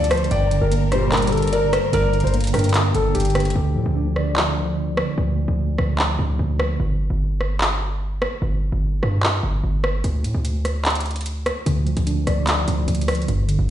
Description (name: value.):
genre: hip hop, trap.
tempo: 148 BPM.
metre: 4/4.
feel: half-time.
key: D minor.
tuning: A4 = 440 Hz.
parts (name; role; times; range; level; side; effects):
warm concert grand piano; melody; 0.0-3.5 s; G4 to D5; -23 LUFS; left 1 dB; low-pass filter, ping-pong delay.
mellow tine electric piano; accompaniment; 0.0-6.8, 11.7-13.7 s; G2 to D5; -23 LUFS; right 1 dB; medium stereo tremolo, low-pass filter.
clear studio string section; sustained chords; 0.0-3.5 s; F3 to Bb4; -30 LUFS; left 2 dB; none.
hard-hitting 808-style bass; bass; 0.0-13.7 s; G1 to A2; -22 LUFS; equal; none.
trap drum kit; drums; 0.0-13.6 s; handclaps, hi-hat, rim click; -24 LUFS; equal; none.
glassy wavetable pluck; second line; 0.3-2.7 s; C5 to G5; -30 LUFS; left 3 dB; chorus, ping-pong delay.
analog synth brass; stabs; 0.9-1.3 s; D2 to G3; -27 LUFS; left 4 dB; chorus, ping-pong delay.
room: light reverb, digital ambience.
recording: played on a big sound system in a bare room, stone room reverb, nothing above 11.0 kHz.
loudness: -18 LUFS.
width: side -11 dB against mid.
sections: 0.0-3.6 A section; 3.6-13.7 B section.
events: break 3.6-11.7.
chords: 0.3 Gm; 3.6 Dm; 6.8 N.C.; 10.0 Dm.